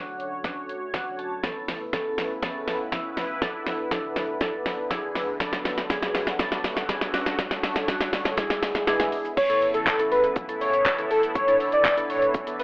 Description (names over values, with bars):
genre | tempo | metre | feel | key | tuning
dance-pop | 121 BPM | 4/4 | straight | A major | A4 = 440 Hz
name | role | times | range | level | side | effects
glassy digital keys | accompaniment | 0.0-12.6 s | B3 to A5 | -30 LUFS | equal | chorus, sidechain pumping
sweeping resonant pad | sustained chords | 0.0-12.6 s | C#3 to C#5 | -32 LUFS | equal | chorus, sidechain pumping
pop drum kit | drums | 0.2-12.6 s | crash cymbal, handclaps, hi-hat, kick drum, shaker, snare drum | -26 LUFS | equal | none
airy dreamy lead | melody | 9.4-12.6 s | A4 to D5 | -21 LUFS | equal | chorus, sidechain pumping
warm sub bass | bass | 9.4-12.6 s | D1 to B1 | -49 LUFS | equal | sidechain pumping
room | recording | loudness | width
light reverb | rough home demo mix, telephone sound | -22 LUFS | side -23 dB against mid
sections
0.0-9.4 A section; 9.4-12.6 B section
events
build-up 0.0-9.4; drum fill 0.0-9.4; synth keys fill 0.7-1.4; drop 9.4-12.6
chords
0.0 Dmaj7; 1.4 Aadd9; 3.4 E7sus4; 5.4 Bm7; 7.1 Dmaj7; 8.4 E7; 9.4 Aadd9; 11.4 E7sus4